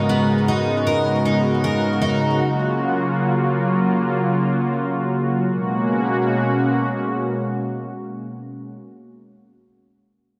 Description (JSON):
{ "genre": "dream pop", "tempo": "78 BPM", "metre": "4/4", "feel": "straight", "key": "G# dorian", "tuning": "A4 = 440 Hz", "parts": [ { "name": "warm analog pad", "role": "sustained chords", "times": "0.0-8.8 s", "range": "B2 to A#4", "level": "-22 LUFS", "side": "equal", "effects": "chorus" }, { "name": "picked twelve-string acoustic guitar", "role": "arpeggios", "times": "0.0-3.0 s", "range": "G#2 to A#4", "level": "-23 LUFS", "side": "equal", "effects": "lush chorus, digital delay" } ], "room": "wet lush hall reverb, RT60 2.5 s", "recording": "bright 1980s-style digital production", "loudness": "-20 LUFS", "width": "mono", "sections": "0.0-5.5 A section; 5.5-8.6 B section", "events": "none", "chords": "0.0 G#m11; 2.4 F#maj7; 5.5 G#m11", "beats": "0.09 0.86 1.63 | 2.40 3.17 3.94 4.71 | 5.48 6.25 7.02 7.79" }